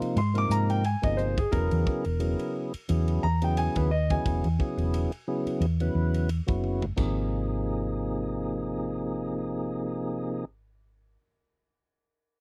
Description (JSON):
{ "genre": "electric jazz fusion", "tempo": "88 BPM", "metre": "4/4", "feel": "swing 55% on 16ths", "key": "unclear", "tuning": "A4 = 437 Hz", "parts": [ { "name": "tonewheel organ", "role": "accompaniment", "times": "0.0-10.5 s", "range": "C3 to B4", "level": "-32 LUFS", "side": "equal", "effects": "slow rotary speaker, overdrive" }, { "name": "hollow-body short-scale fingered electric bass", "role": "bass", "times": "0.0-11.2 s", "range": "E1 to Ab2", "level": "-30 LUFS", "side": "equal", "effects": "none" }, { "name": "tight funk drum kit", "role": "drums", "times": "0.0-7.2 s", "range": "china cymbal, hi-hat, kick drum, ride cymbal, toms", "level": "-34 LUFS", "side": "equal", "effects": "none" }, { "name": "clear concert grand piano", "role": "melody", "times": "0.2-5.1 s", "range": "Ab4 to D6", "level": "-33 LUFS", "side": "equal", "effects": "none" } ], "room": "little or no reverb", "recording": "dry, close 1970s-style studio recording", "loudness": "-28 LUFS", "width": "mono", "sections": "0.0-7.0 A section; 7.0-9.7 B section", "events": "grand piano solo 0.0-7.0; drum fill 6.6-7.0", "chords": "0.0 Abmaj9; 1.5 Eadd9; 7.0 Abadd9", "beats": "0.16 0.84 | 1.52 2.21 2.89 3.57 | 4.25 4.93 5.61 6.29 | 6.97 7.65 8.34 9.02" }